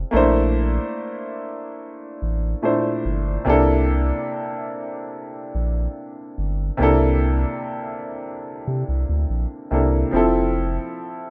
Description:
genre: contemporary R&B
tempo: 72 BPM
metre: 4/4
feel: straight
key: unclear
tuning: A4 = 440 Hz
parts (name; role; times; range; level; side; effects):
- clear grand piano; accompaniment; 0.0-11.3 s; Bb2 to C5; -24 LUFS; equal; none
- warm sub bass; bass; 0.0-10.8 s; F1 to C3; -24 LUFS; equal; none
room: light reverb, studio ambience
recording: rough home demo mix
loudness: -22 LUFS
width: mono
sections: 0.0-11.3 A section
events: none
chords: 0.1 C13; 10.1 Fmaj7

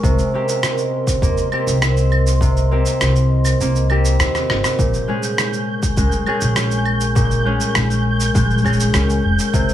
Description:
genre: folktronica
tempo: 101 BPM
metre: 4/4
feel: straight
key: Bb dorian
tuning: A4 = 440 Hz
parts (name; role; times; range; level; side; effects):
- warbly tape-like pad; sustained chords; 0.0-9.7 s; Bb4 to Db6; -26 LUFS; right 2 dB; chorus, built-in reverb
- concert harp; arpeggios; 0.0-9.7 s; Bb2 to Ab4; -20 LUFS; left 1 dB; digital delay
- upright bass; bass; 0.0-9.7 s; F1 to Eb2; -18 LUFS; equal; none
- electronic cabasa, rim click and claves; drums; 0.0-9.7 s; none; -23 LUFS; right 1 dB; overdrive
- electronic kick drum; drums; 0.0-9.7 s; none; -20 LUFS; equal; none
- flickering grainy texture; texture; 5.0-9.7 s; G6; -26 LUFS; right 3 dB; built-in reverb
room: light reverb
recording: small room ambience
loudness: -15 LUFS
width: side -11 dB against mid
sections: 0.0-9.7 A section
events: kick drops out 3.6-4.8; drum fill 4.3-4.8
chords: 0.0 Cm7; 4.8 Bbm7

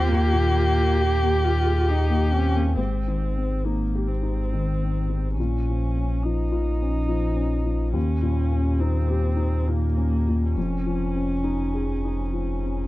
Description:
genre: neoclassical piano and strings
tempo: 69 BPM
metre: 3/4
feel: rubato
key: unclear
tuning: A4 = 438 Hz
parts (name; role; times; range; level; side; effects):
- dark violin; melody; 0.0-2.5 s; G4; -26 LUFS; left 2 dB; tape echo
- dark cello; second line; 0.0-1.9 s; Bb3; -30 LUFS; right 7 dB; none
- dark viola; accompaniment; 0.0-12.9 s; Bb3 to G4; -29 LUFS; right 4 dB; none
- felt-muted upright piano; accompaniment; 0.0-12.9 s; Eb2 to Ab4; -27 LUFS; left 4 dB; none
- sub bass with octave; bass; 0.0-12.9 s; F1 to Eb2; -24 LUFS; equal; none
room: little or no reverb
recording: dry, close 1970s-style studio recording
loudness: -21 LUFS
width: side -17 dB against mid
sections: 0.0-2.8 A section; 2.8-12.9 B section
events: none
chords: 0.0 Ebadd9; 2.8 Abmaj7; 5.4 Bbm; 8.0 Eb7; 10.6 Dbadd9/F

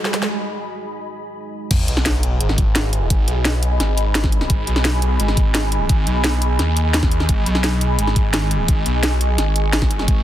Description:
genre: dark technical drum and bass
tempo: 172 BPM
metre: 4/4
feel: straight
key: G# minor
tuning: A4 = 439 Hz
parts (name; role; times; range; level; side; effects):
- dark analog pad; sustained chords; 0.0-1.7 s; G#3 to F#4; -35 LUFS; right 4 dB; chorus, sidechain pumping
- riser and sub drop; sound effects; 0.0-3.1 s; none; -26 LUFS; right 1 dB; none
- ethereal airy pad; texture; 0.0-10.2 s; G#4 to C#6; -26 LUFS; right 1 dB; ensemble chorus, built-in reverb, sidechain pumping
- drum and bass drum kit; drums; 0.1-10.2 s; crash cymbal, hi-hat, snare drum; -22 LUFS; equal; overdrive
- phased detuned saw bass; bass; 1.7-10.2 s; G#1 to D#2; -19 LUFS; equal; phaser, overdrive, sidechain pumping
- electronic kick drum; drums; 1.7-10.2 s; none; -18 LUFS; equal; overdrive
room: little or no reverb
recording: dense, heavily limited modern master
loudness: -16 LUFS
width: side -12 dB against mid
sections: 0.0-1.7 A section; 1.7-10.2 B section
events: build-up 0.0-1.7; drum fill 0.0-0.3; riser 0.0-0.3; break 0.3-1.7; drop 1.7-10.2; impact 1.7-3.1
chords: 0.0 G#m

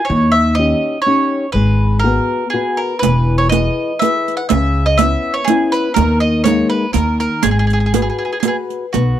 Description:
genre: italian folk, Italian serenade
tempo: 122 BPM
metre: 3/4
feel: swing 53% on 8ths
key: G# minor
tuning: A4 = 439 Hz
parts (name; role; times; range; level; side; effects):
- bowl-back mandolin; melody; 0.0-9.2 s; F#4 to F#5; -18 LUFS; right 1 dB; none
- nylon-string guitar; accompaniment; 0.1-9.2 s; C#3 to B4; -19 LUFS; left 4 dB; none
- upright bass; bass; 0.1-9.1 s; E1 to D#2; -16 LUFS; equal; none
- riq; percussion; 3.0-9.2 s; none; -18 LUFS; right 15 dB; none
room: small room ambience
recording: dry, close 1970s-style studio recording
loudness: -13 LUFS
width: side -11 dB against mid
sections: 0.0-8.9 A section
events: none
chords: 0.1 D#7; 1.5 G#m7; 3.0 E; 4.5 C#m7; 6.0 D#sus4; 6.9 D#5; 7.4 G#m7

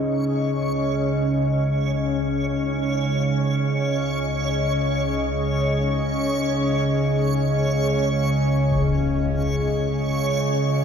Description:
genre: dark ambient drone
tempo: free time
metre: none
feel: none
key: unclear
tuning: A4 = 440 Hz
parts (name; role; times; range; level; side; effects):
- deep dark ambient pad; sustained chords; 0.0-10.8 s; C#4 to D#5; -25 LUFS; equal; chorus, built-in reverb
- bright concert grand piano; arpeggios; 0.0-10.8 s; G#2 to G#4; -50 LUFS; equal; none
- organ-like drone; drone; 0.0-10.8 s; C#2 to C#3; -22 LUFS; equal; ensemble chorus, built-in reverb
- backwards swelling texture; texture; 0.0-10.8 s; C#5; -28 LUFS; right 1 dB; built-in reverb
- impact; percussion; 8.7-8.9 s; none; -32 LUFS; equal; low-pass filter on sfx
room: wet lush hall reverb, RT60 3.0 s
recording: dreamy mix soaked in reverb, faint mains hum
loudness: -20 LUFS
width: side -7 dB against mid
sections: 0.0-10.8 A section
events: fade-in on impacts and reversed cymbals 0.0-10.8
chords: 0.0 C#sus2

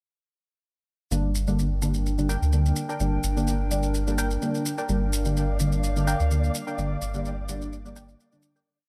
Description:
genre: dub techno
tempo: 127 BPM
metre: 4/4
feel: swing 54% on 16ths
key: G minor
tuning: A4 = 440 Hz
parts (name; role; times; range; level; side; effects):
- warbly tape-like pad; sustained chords; 1.9-8.6 s; D4 to G5; -37 LUFS; equal; chorus, built-in reverb
- deep mellow chord stab; stabs; 1.1-8.6 s; D3 to D4; -30 LUFS; equal; chorus, phaser, dub echo
- soft dub sub bass; bass; 1.1-8.2 s; G1 to D2; -28 LUFS; equal; tube saturation
- maracas; percussion; 1.1-8.6 s; none; -38 LUFS; equal; none
- filtered dub chord stab; riff; 2.3-8.7 s; D4 to G5; -38 LUFS; equal; chorus, dub echo
- flickering grainy texture; texture; 5.1-8.7 s; D5; -41 LUFS; equal; built-in reverb
room: light reverb, digital ambience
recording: none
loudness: -26 LUFS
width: mono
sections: 1.1-8.7 groove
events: fade-out 6.2-8.7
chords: 1.1 Gm

